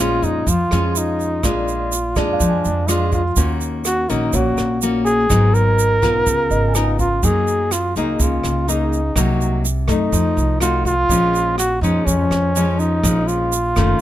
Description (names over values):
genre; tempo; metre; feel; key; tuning
bossa nova; 124 BPM; 4/4; straight; Bb minor; A4 = 440 Hz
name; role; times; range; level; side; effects
breathy flugelhorn; melody; 0.0-14.0 s; Db4 to Bb4; -20 LUFS; right 1 dB; none
dark concert grand piano; accompaniment; 0.0-7.7 s; C5 to Bb5; -30 LUFS; right 7 dB; none
nylon-string guitar; accompaniment; 0.0-14.0 s; F2 to Bb4; -20 LUFS; left 3 dB; none
upright bass; bass; 0.0-14.0 s; Gb1 to Gb2; -21 LUFS; right 1 dB; none
jazz brush drum kit; drums; 0.2-13.9 s; hi-hat, kick drum, rim click; -26 LUFS; right 1 dB; none
tube shaker; percussion; 0.2-14.0 s; none; -26 LUFS; right 8 dB; none
room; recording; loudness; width
little or no reverb; close, detailed microphones; -15 LUFS; side -13 dB against mid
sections
0.0-14.0 A section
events
none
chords
0.0 Bbm7; 1.4 Bb7; 3.4 Ebm7; 5.3 Abm7; 6.3 Db13; 7.2 Gb69; 9.2 Cm7b5; 10.1 F7b9; 11.1 Bbm7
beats
0.47 0.95 | 1.44 1.92 2.40 2.89 | 3.37 3.85 4.34 4.82 | 5.30 5.79 6.27 6.75 | 7.23 7.72 8.20 8.68 | 9.17 9.65 10.13 10.62 | 11.10 11.58 12.07 12.55 | 13.04 13.52 14.00